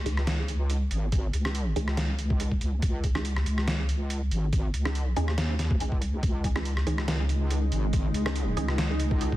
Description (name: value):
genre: deep dubstep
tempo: 141 BPM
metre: 4/4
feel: swing 54% on 16ths, half-time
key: C# minor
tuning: A4 = 440 Hz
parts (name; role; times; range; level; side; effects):
- wobble bass; bass; 0.0-9.4 s; G#1 to D#2; -27 LUFS; equal; chorus
- filtered dub chord stab; stabs; 0.1-8.7 s; E3 to G#4; -37 LUFS; right 1 dB; phaser, dub echo
- trip hop sampler-style drum kit; drums; 0.1-9.3 s; hi-hat, rim click, snare drum; -33 LUFS; equal; studio reverb
- electronic kick drum; drums; 1.1-9.4 s; none; -27 LUFS; equal; studio reverb
- granular cloud pad; sustained chords; 7.0-9.4 s; C#3 to D#4; -32 LUFS; equal; built-in reverb
room: light reverb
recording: dense, heavily limited modern master, vinyl crackle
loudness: -25 LUFS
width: side -15 dB against mid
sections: 0.0-9.4 A section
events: none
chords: 0.0 C#madd9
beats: 0.27 0.70 | 1.12 1.55 1.97 2.40 | 2.83 3.25 3.68 4.10 | 4.53 4.95 5.38 5.80 | 6.23 6.66 7.08 7.51 | 7.93 8.36 8.78 9.21